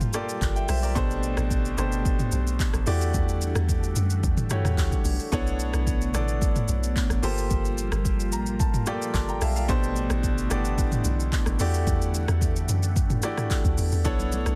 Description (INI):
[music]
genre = amapiano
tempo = 110 BPM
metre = 4/4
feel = straight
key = unclear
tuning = A4 = 440 Hz
[part]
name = clear baby grand piano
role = accompaniment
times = 0.0-14.6 s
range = B2 to C6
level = -32 LUFS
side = equal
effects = none
[part]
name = string machine, cellos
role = sustained chords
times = 0.0-14.6 s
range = E3 to F#5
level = -37 LUFS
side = equal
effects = phaser, ensemble chorus, sidechain pumping
[part]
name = deep log drum bass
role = bass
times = 0.0-14.6 s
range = G1 to G2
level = -28 LUFS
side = equal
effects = none
[part]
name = deep house drum kit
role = drums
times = 0.0-14.6 s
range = handclaps, hi-hat, kick drum, rim click, shaker, toms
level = -29 LUFS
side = equal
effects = none
[part]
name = congas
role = percussion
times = 14.2-14.5 s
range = none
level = -40 LUFS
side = equal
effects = none
[sound]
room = little or no reverb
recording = dense, heavily limited modern master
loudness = -25 LUFS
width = mono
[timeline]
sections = 0.0-14.6 A section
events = grand piano fill 8.1-9.7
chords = 0.0 Gm11; 1.0 Am11; 2.9 Em11; 5.3 Bm11; 7.2 Gm11; 9.7 Am11; 11.6 Em11; 14.1 Bm11